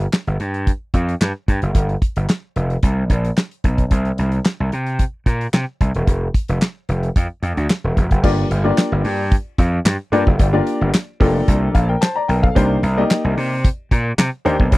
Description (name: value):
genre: early-eighties boogie funk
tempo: 111 BPM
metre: 4/4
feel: straight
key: G minor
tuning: A4 = 440 Hz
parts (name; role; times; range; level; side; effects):
- gritty slap bass; bass; 0.0-14.8 s; E1 to C3; -18 LUFS; equal; overdrive
- damped 70s drum kit; drums; 0.0-14.8 s; crash cymbal, handclaps, hi-hat, kick drum, snare drum; -16 LUFS; equal; none
- clear concert grand piano; accompaniment; 8.2-14.8 s; Bb3 to Bb5; -19 LUFS; left 2 dB; none
room: little or no reverb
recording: dry, close 1970s-style studio recording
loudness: -16 LUFS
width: side -20 dB against mid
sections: 0.0-8.2 A section; 8.2-14.8 B section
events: none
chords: 0.0 G7(no3); 3.9 N.C.; 8.2 Gm7; 12.6 Cm9